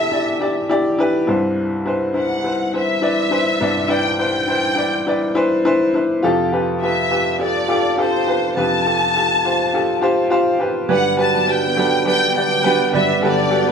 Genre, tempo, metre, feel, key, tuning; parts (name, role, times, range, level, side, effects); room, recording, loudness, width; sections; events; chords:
pop; 103 BPM; 4/4; swing 56% on 16ths; G major; A4 = 440 Hz
warm studio violin section; melody; 0.0-13.7 s; C5 to A5; -20 LUFS; left 2 dB
clear upright piano; accompaniment; 0.0-13.7 s; C2 to E5; -17 LUFS; left 1 dB
warm studio string section; sustained chords; 10.9-13.7 s; D3 to G5; -26 LUFS; right 2 dB
direct-recorded clean electric guitar; riff; 10.9-13.7 s; G2 to B4; -20 LUFS; right 7 dB
wet studio reverb, RT60 0.8 s; band playing live in one room; -15 LUFS; side -6 dB against mid
0.0-10.9 A section; 10.9-13.7 B section
0.0 Em7; 1.3 Cmaj7; 6.2 Fadd9; 10.9 Gmaj7